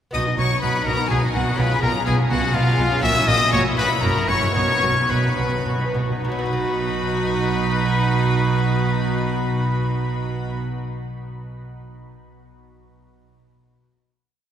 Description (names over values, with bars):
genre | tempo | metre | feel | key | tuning
classical, baroque-style concerto movement with solo episodes | 100-125 BPM | 3/4 | straight | B major | A4 = 439 Hz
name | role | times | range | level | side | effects
bright trumpet | melody | 0.1-10.6 s | E#4 to E5 | -24 LUFS | left 2 dB | none
rich studio violin section | melody | 0.1-10.6 s | E#5 to E6 | -27 LUFS | left 4 dB | none
dark chamber violin section | second line | 0.1-10.6 s | D#4 to B4 | -28 LUFS | left 2 dB | none
lute | accompaniment | 0.1-10.8 s | F#2 to B4 | -29 LUFS | equal | none
rich chamber viola section | accompaniment | 0.1-10.6 s | A#3 to E4 | -30 LUFS | right 2 dB | none
warm chamber cello section | bass | 0.1-10.6 s | F#2 to B2 | -26 LUFS | right 3 dB | none
warm chamber double bass section | bass | 0.1-10.6 s | F#1 to B1 | -25 LUFS | right 2 dB | none
room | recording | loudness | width
wet cathedral reverb, RT60 5.9 s | recorded in a church or concert hall | -18 LUFS | side -9 dB against mid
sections
0.1-6.2 ritornello; 6.2-9.8 final chord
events
slowing down 2.3-6.2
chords
0.1 B; 1.6 C#7/B; 3.0 F#7/A#; 4.0 F#7; 4.6 B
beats
| 0.14 0.62 1.11 | 1.59 2.07 2.55 | 3.03 3.52 4.03 | 4.55 5.10 5.66 | 6.25 6.84 7.44 | 8.04 8.64 9.24